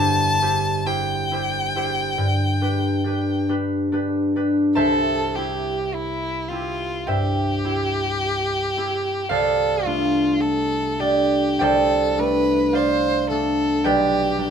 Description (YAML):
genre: classical, romantic duo for violin and harp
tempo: 44-56 BPM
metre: 4/4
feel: rubato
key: C major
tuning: A4 = 440 Hz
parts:
  - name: rich violin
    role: melody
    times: 0.0-14.5 s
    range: E4 to A5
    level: -23 LUFS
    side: left 2 dB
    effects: none
  - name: concert harp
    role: accompaniment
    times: 0.0-14.5 s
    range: G1 to A5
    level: -20 LUFS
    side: right 1 dB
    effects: none
room: light reverb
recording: close, detailed microphones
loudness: -19 LUFS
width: side -7 dB against mid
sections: 0.0-4.8 A section; 4.8-14.5 B section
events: none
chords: 0.0 C/G; 2.2 G; 4.8 C; 9.3 Dm7/C; 13.9 G/B